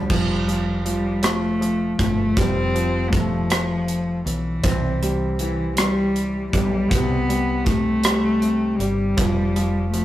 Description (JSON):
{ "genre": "six-eight pop ballad", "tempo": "53 BPM (dotted quarters)", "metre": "6/8", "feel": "straight", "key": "unclear", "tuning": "A4 = 439 Hz", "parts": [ { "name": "rich cello", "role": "melody", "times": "0.0-10.0 s", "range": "E3 to C4", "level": "-22 LUFS", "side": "left 1 dB", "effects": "none" }, { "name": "clear concert grand piano", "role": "accompaniment", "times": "0.0-10.0 s", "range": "A2 to C4", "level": "-26 LUFS", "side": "right 1 dB", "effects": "none" }, { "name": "woody fretless electric bass", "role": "bass", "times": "0.1-10.0 s", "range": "F1 to C2", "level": "-26 LUFS", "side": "equal", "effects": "none" }, { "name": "modern studio drum kit", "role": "drums", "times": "0.1-10.0 s", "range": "crash cymbal, hi-hat, kick drum, rim click", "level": "-23 LUFS", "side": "right 1 dB", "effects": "none" } ], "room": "moderate stone room reverb, RT60 1.1 s", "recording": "rough rehearsal-room recording, warm saturation", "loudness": "-18 LUFS", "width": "side -14 dB against mid", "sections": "0.1-10.0 A section", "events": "none", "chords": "0.1 Fadd9; 4.6 C; 9.2 Fsus2", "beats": "| 0.10 1.24 | 2.37 3.51 | 4.64 5.77 | 6.91 8.04 | 9.18" }